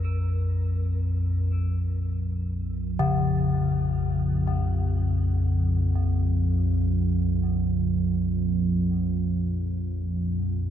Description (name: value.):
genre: dark ambient drone.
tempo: free time.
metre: none.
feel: none.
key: Bb minor.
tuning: A4 = 444 Hz.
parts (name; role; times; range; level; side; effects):
gamelan-type bronze metallophone; arpeggios; 0.0-8.9 s; Db3 to Bb4; -29 LUFS; left 4 dB; ping-pong delay.
deep rumbling drone; drone; 0.0-10.7 s; Bb1 to F2; -24 LUFS; equal; built-in reverb.
room: moderate huge ambient reverb, RT60 8.2 s.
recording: none.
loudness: -23 LUFS.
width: side -10 dB against mid.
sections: 0.0-10.7 A section.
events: none.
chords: 0.0 Bbm.